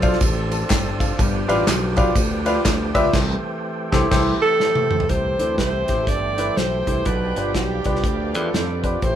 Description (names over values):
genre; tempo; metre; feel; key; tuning
uptempo gospel; 123 BPM; 4/4; swing 62% on 8ths; C major; A4 = 440 Hz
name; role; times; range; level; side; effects
warm concert grand piano; accompaniment; 0.0-9.2 s; G2 to A5; -23 LUFS; left 1 dB; none
percussive tonewheel organ; sustained chords; 0.0-9.2 s; E3 to A4; -28 LUFS; right 1 dB; slow rotary speaker, overdrive
modern bright fingered electric bass; bass; 0.0-9.2 s; G1 to F2; -24 LUFS; equal; none
natural country drum kit; drums; 0.0-9.2 s; crash cymbal, hi-hat, kick drum, ride cymbal, snare drum, toms; -22 LUFS; equal; none
tambourine and handclaps; percussion; 0.0-3.0 s; none; -30 LUFS; equal; none
breathy alto saxophone; melody; 4.4-9.2 s; G4 to D5; -22 LUFS; right 2 dB; none
warm studio string section; sustained chords; 5.1-9.2 s; A4 to G5; -35 LUFS; left 2 dB; none
room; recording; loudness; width
moderate studio ambience, RT60 0.5 s; band playing live in one room; -18 LUFS; side -10 dB against mid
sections
0.0-5.1 A section; 5.1-9.2 B section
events
band accent 3.1-5.1; drum fill 4.6-5.1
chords
0.0 Dm7; 1.2 G7; 3.1 C6; 7.1 G7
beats
0.21 0.70 | 1.19 1.68 2.16 2.65 | 3.14 3.63 4.12 4.61 | 5.09 5.58 6.08 6.57 | 7.06 7.55 8.04 8.53 | 9.03